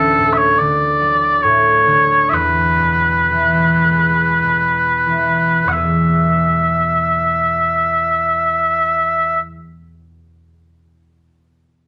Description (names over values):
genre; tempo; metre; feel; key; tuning
celtic folk, Celtic slow air; 44-73 BPM; 3/4; rubato; E mixolydian; A4 = 440 Hz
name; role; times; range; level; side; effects
mellow small bagpipes; melody; 0.0-9.4 s; A4 to F#5; -16 LUFS; equal; none
concert harp; accompaniment; 0.0-9.6 s; D2 to B4; -22 LUFS; equal; none
room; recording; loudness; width
moderate studio reverb, RT60 0.7 s; none; -15 LUFS; mono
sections
0.0-5.7 A section; 5.7-9.6 B section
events
slowing down 0.0-5.7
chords
0.0 D; 2.3 E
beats
0.57 1.42 | 2.31 3.30 4.42 | 5.71 7.02 8.30